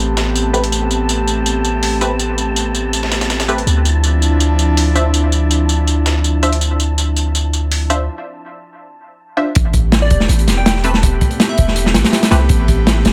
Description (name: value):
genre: drum and bass, jungle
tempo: 163 BPM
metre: 4/4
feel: straight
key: A minor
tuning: A4 = 440 Hz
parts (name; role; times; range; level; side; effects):
- airy breathy pad; sustained chords; 0.0-13.1 s; F3 to G4; -24 LUFS; equal; chorus
- long sustained 808-style bass; bass; 0.0-13.1 s; E1 to D2; -18 LUFS; equal; none
- wind-like tuned noise texture; texture; 0.0-13.1 s; A5 to B5; -30 LUFS; equal; built-in reverb
- dusty soul sampler-style drum kit; drums; 0.2-8.0 s; hi-hat, snare drum, tambourine; -22 LUFS; equal; overdrive, high-pass filter on perc, high-pass filter on snare, high-pass filter on hats, high-pass filter on room
- filtered dub chord stab; stabs; 0.5-12.4 s; A3 to E5; -24 LUFS; equal; chorus, dub echo
- crunchy breakbeat drum kit; drums; 9.6-13.1 s; hi-hat, kick drum, snare drum; -16 LUFS; equal; none
- plucky unison lead; melody; 10.0-11.9 s; D5 to A5; -26 LUFS; equal; dub echo
room: light reverb, small room ambience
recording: none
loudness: -15 LUFS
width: mono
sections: 0.0-9.6 A section; 9.6-13.1 B section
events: break 8.1-9.6; drop 9.6-13.1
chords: 0.0 Am9; 3.7 Dm9; 9.6 Am9